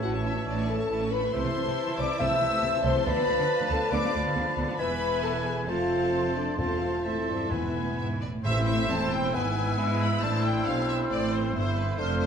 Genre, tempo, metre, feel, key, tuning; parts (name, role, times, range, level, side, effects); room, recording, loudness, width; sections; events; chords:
quick classical-period movement for symphony orchestra; 137 BPM; 4/4; rubato; A minor; A4 = 443 Hz
rich studio violin section; melody; 0.0-12.3 s; B4 to E6; -35 LUFS; left 2 dB
dark clarinet; second line; 0.0-12.3 s; E4 to E5; -39 LUFS; equal
small flute group; second line; 0.0-12.3 s; A5 to F6; -37 LUFS; left 2 dB
warm oboe; second line; 0.0-12.3 s; B4 to A5; -37 LUFS; right 1 dB
warm studio violin section; second line; 0.0-12.3 s; D4 to C#6; -39 LUFS; left 2 dB
rich studio viola section; accompaniment; 0.0-12.3 s; E3 to B4; -34 LUFS; right 1 dB
warm bassoon; accompaniment; 0.0-12.3 s; E3 to E4; -36 LUFS; right 1 dB
mellow French horn section; sustained chords; 0.0-12.3 s; B3 to E5; -30 LUFS; left 3 dB
rich studio cello section; bass; 0.0-12.3 s; E2 to G#3; -34 LUFS; right 2 dB
rich studio double bass section; bass; 0.0-12.3 s; E1 to G#2; -33 LUFS; right 2 dB
timpani; percussion; 0.0-0.2, 6.6-9.1 s; E2 to A2; -34 LUFS; equal
wet scoring stage reverb, RT60 1.7 s; -24 LUFS; side -7 dB against mid
0.0-8.4 A section; 8.4-12.3 B section
0.0 A; 1.3 Am/C; 3.1 Bm7b5/D; 4.8 E; 5.7 F; 6.6 Am/E; 7.5 E; 8.4 Am; 9.3 E/G#; 10.2 Am